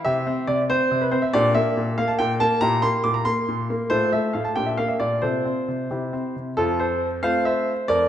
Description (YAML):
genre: classical-period piano sonatina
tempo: 92 BPM (dotted quarters)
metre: 6/8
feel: straight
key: F major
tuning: A4 = 437 Hz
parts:
  - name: warm grand piano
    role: solo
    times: 0.0-8.1 s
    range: F2 to D6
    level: -20 LUFS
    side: equal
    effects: none
room: wet recital hall reverb, RT60 1.5 s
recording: minimal, uncompressed stereo recording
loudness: -20 LUFS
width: side -10 dB against mid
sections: 0.0-6.6 A section; 6.6-8.1 B section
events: none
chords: 0.1 C; 1.3 Gm/Bb; 2.6 C7/Bb; 3.9 F/A; 4.6 Gm/Bb; 5.2 F/C; 5.9 C; 6.6 F